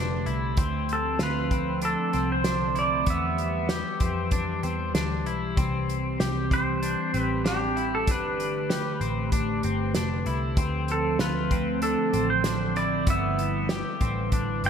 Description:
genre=dream pop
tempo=96 BPM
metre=4/4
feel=straight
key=unclear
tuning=A4 = 440 Hz
part: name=warbly tape-like pad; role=sustained chords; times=0.0-14.7 s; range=D3 to B4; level=-30 LUFS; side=right 1 dB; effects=chorus, built-in reverb, shimmer reverb
part: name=electric guitar at the edge of break-up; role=arpeggios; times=0.0-14.7 s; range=B3 to G4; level=-32 LUFS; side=left 4 dB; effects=analog chorus, shimmer reverb, ping-pong delay
part: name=vintage muted picked electric bass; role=bass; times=0.0-14.7 s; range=F1 to F2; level=-30 LUFS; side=equal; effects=none
part: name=loose indie drum kit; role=drums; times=0.3-14.7 s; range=hi-hat, kick drum, snare drum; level=-28 LUFS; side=equal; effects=gated reverb
part: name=pedal steel guitar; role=melody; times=0.9-14.7 s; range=G4 to G5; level=-29 LUFS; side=right 1 dB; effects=lush chorus, shimmer reverb, ping-pong delay
room=moderate plate reverb, RT60 2.8 s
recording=bright 1980s-style digital production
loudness=-24 LUFS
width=side -7 dB against mid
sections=0.0-14.7 A section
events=none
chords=0.0 Gadd9; 0.6 Dm7; 3.1 Em; 5.6 C; 8.1 Gadd9; 10.6 Dm7; 13.1 G6

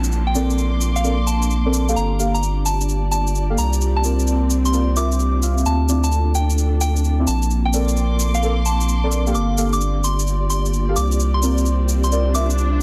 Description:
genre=UK garage, two-step garage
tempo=130 BPM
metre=4/4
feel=swing 65% on 16ths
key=unclear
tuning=A4 = 440 Hz
part: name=soft synth bell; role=melody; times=0.0-12.8 s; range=F5 to D6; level=-29 LUFS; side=equal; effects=chorus, dub echo
part: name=ethereal airy pad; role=sustained chords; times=0.0-12.8 s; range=Bb3 to A5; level=-33 LUFS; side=equal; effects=ensemble chorus, built-in reverb
part: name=saturated sub bass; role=bass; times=0.0-12.8 s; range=G1 to D2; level=-21 LUFS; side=equal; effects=none
part: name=cabasa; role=drums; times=0.0-12.7 s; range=none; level=-30 LUFS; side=equal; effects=studio reverb, soft clipping on snare
part: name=downlifter and swell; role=sound effects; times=0.0-2.0, 12.3-12.8 s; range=none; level=-35 LUFS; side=equal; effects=none
part: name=dark symphonic string section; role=texture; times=0.0-12.8 s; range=Bb3 to D6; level=-30 LUFS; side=equal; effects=none
part: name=deep mellow chord stab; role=stabs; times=0.3-12.5 s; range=Bb3 to F5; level=-27 LUFS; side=equal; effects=chorus, dub echo
room=moderate small room reverb, RT60 0.5 s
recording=dense, heavily limited modern master, vinyl crackle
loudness=-19 LUFS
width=mono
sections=0.0-12.8 A section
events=swell 12.3-12.8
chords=0.0 Bbmaj9; 2.0 Gm9; 3.6 C9sus4; 5.7 Dm9; 7.3 Bbmaj9; 9.3 Gm9; 11.0 C9sus4

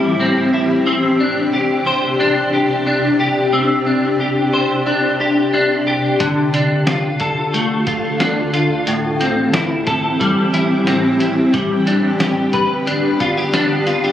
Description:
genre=dream pop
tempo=90 BPM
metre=4/4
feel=straight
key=C major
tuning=A4 = 441 Hz
part: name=granular cloud pad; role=sustained chords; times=0.0-14.1 s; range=C2 to A4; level=-19 LUFS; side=equal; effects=built-in reverb
part: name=electric guitar at the edge of break-up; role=arpeggios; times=0.0-14.1 s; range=A2 to C5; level=-16 LUFS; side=left 1 dB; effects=ensemble chorus, ping-pong delay
part: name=lo-fi sampler-style drum kit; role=drums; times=6.2-14.0 s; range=hi-hat, kick drum, snare drum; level=-22 LUFS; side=equal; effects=none
room=moderate shimmer reverb, RT60 7.8 s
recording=recorded on a phone in the room, club reverb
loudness=-14 LUFS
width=side -10 dB against mid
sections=0.0-14.1 A section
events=none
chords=0.0 Am7; 0.9 Csus2; 6.2 Dm; 8.9 Am7; 11.5 G

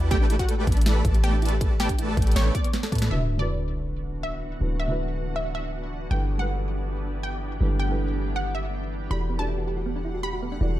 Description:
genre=future bass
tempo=160 BPM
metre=4/4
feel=half-time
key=D major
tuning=A4 = 437 Hz
part: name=wide unison pluck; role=melody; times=0.0-10.4 s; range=F#4 to D6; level=-33 LUFS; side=equal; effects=sidechain pumping, ping-pong delay
part: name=thumb-piano-like synth pluck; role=arpeggios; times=0.0-3.0, 9.1-10.7 s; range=B3 to A4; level=-34 LUFS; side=right 3 dB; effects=chorus, sidechain pumping, ping-pong delay
part: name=dense compressed supersaw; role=riff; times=0.0-3.1 s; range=A3 to B5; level=-30 LUFS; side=equal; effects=sidechain pumping, low-pass filter
part: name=warm 808-style bass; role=bass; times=0.0-10.8 s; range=D1 to A2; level=-26 LUFS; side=equal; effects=sidechain pumping
part: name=electronic kick drum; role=drums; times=0.1-3.0 s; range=none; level=-24 LUFS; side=equal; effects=none
part: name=trap drum kit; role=drums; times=0.1-3.1 s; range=hi-hat, snare drum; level=-31 LUFS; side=right 1 dB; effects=low-pass filter on hats, low-pass filter on snare, low-pass filter on room
part: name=felt-muted upright piano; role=accompaniment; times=3.1-10.8 s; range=D3 to D5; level=-33 LUFS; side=right 2 dB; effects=sidechain pumping, ping-pong delay
part: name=shimmering ambient pad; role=sustained chords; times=3.9-10.8 s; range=D3 to F#5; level=-37 LUFS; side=equal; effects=chorus, built-in reverb, sidechain pumping
part: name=sub drop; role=sound effects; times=3.1-4.6 s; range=none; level=-32 LUFS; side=left 1 dB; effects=none
room=little or no reverb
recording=none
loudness=-23 LUFS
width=side -14 dB against mid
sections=0.0-3.1 A section; 3.1-10.8 B section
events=drop 0.0-3.1; drum fill 2.7-3.1; band accent 3.0; impact 3.1-4.6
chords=0.1 A9sus4; 3.1 D69; 6.1 G6; 9.1 Em11

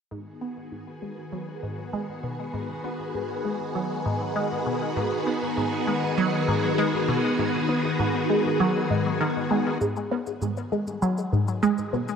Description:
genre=ambient, sequencer-driven space music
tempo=99 BPM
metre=4/4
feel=straight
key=G# minor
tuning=A4 = 439 Hz
part: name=phased string machine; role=sustained chords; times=0.1-12.2 s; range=D#3 to G#4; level=-27 LUFS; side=equal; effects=ensemble chorus, phaser
part: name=resonant blip pluck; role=riff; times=0.1-12.2 s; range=G#2 to B3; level=-27 LUFS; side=equal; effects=phaser, analog chorus, ping-pong delay
part: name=wind-like tuned noise texture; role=texture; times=1.8-12.2 s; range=B3 to D#5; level=-34 LUFS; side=left 1 dB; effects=built-in reverb
part: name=electronic shaker and toms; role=percussion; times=9.8-12.2 s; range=none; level=-43 LUFS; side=left 5 dB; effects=ping-pong delay
room=wet spring reverb, RT60 2.1 s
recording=echo-heavy mix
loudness=-23 LUFS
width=side -7 dB against mid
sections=0.1-9.8 A section; 9.8-12.2 B section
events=fade-in on synth arpeggio sound 0.1-9.8; fade-in on string machine 0.1-9.8; fade-in on synth texture 0.1-9.8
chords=0.1 G#m7

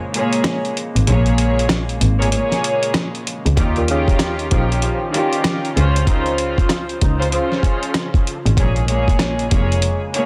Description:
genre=hip hop, boom-bap hip-hop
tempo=96 BPM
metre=4/4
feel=swing 62% on 16ths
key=Bb dorian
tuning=A4 = 442 Hz
part: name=hollow soft pad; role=sustained chords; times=0.0-10.3 s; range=Db3 to C5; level=-32 LUFS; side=equal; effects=none
part: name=dusty soul sampler-style drum kit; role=drums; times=0.1-10.3 s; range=hi-hat, kick drum, rim click, snare drum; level=-22 LUFS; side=equal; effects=none
part: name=warm studio string section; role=accompaniment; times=0.2-10.3 s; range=Bb2 to Db5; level=-24 LUFS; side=equal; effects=high-pass filter, low-pass filter
part: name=clear double bass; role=bass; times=1.0-9.8 s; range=F1 to Eb2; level=-21 LUFS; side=equal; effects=none
part: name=mellow horn section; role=stabs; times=3.6-8.1 s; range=Bb2 to Ab4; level=-30 LUFS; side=equal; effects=high-pass filter, low-pass filter, delay
part: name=breathy tenor saxophone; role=melody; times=3.8-4.7 s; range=Bb2 to F3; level=-29 LUFS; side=equal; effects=high-pass filter, low-pass filter, delay
room=light reverb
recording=dense, heavily limited modern master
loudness=-18 LUFS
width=mono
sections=0.0-10.3 A section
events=break 0.0-3.6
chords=0.0 Bbm7; 3.6 Eb9; 5.8 Dbmaj7; 8.6 Bbm7

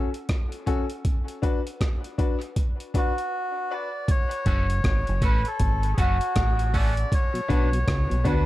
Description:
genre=dub reggae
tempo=79 BPM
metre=4/4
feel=swing 61% on 16ths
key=F# minor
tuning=A4 = 437 Hz
part: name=bright upright piano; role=stabs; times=0.0-8.4 s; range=C#4 to B4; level=-33 LUFS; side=left 6 dB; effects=high-pass filter, dub echo
part: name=breakbeat sampler-style drum kit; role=drums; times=0.1-8.5 s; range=hi-hat, kick drum, rim click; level=-24 LUFS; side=equal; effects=none
part: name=melodica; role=melody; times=3.0-8.5 s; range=F#4 to D5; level=-28 LUFS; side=equal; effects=dub echo
part: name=mellow tonewheel organ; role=accompaniment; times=4.3-8.4 s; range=B2 to F#4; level=-34 LUFS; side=left 1 dB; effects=chorus vibrato, stopped rotary speaker, high-pass filter
part: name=electric guitar at the edge of break-up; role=accompaniment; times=4.5-8.4 s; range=A3 to F#4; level=-36 LUFS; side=right 3 dB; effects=analog chorus, high-pass filter, dub echo
part: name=deep dub fingered electric bass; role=bass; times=4.5-8.5 s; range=F#1 to D2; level=-24 LUFS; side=equal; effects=none
room=little or no reverb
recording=none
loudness=-22 LUFS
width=side -16 dB against mid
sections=0.0-4.1 A section; 4.1-8.5 B section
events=break 0.0-4.1; filter sweep 1.1-7.1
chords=0.0 F#m; 1.1 Bm; 4.1 F#m; 7.1 Bm

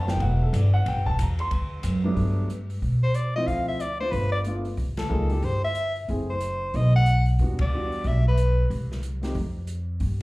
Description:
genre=jazz, small-group swing and bop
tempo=184 BPM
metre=4/4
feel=swing 62% on 8ths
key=G major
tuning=A4 = 439 Hz
part: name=warm concert grand piano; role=accompaniment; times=0.0-9.3 s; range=G2 to C6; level=-30 LUFS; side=equal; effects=slapback echo
part: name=upright bass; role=bass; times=0.0-10.2 s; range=E1 to B2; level=-24 LUFS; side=equal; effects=none
part: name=open jazz drum kit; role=drums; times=0.1-10.1 s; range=hi-hat, kick drum, ride cymbal, snare drum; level=-32 LUFS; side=equal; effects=none
part: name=breathy soprano saxophone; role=melody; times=3.0-8.7 s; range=A4 to F#5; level=-28 LUFS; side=left 1 dB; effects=slapback echo
room=small room ambience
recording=live gig heard through the venue's PA, club reverb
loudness=-22 LUFS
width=side -21 dB against mid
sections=0.0-2.2 A section; 2.2-10.2 B section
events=band accent 4.9, 7.6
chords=0.0 Gmaj13; 0.9 A5; 1.5 D6; 2.2 Gmaj9; 3.5 Dm7; 4.1 G7; 4.8 C6; 6.1 F#m7b5; 6.7 B7; 7.4 Em7; 8.7 Cm; 9.4 N.C.

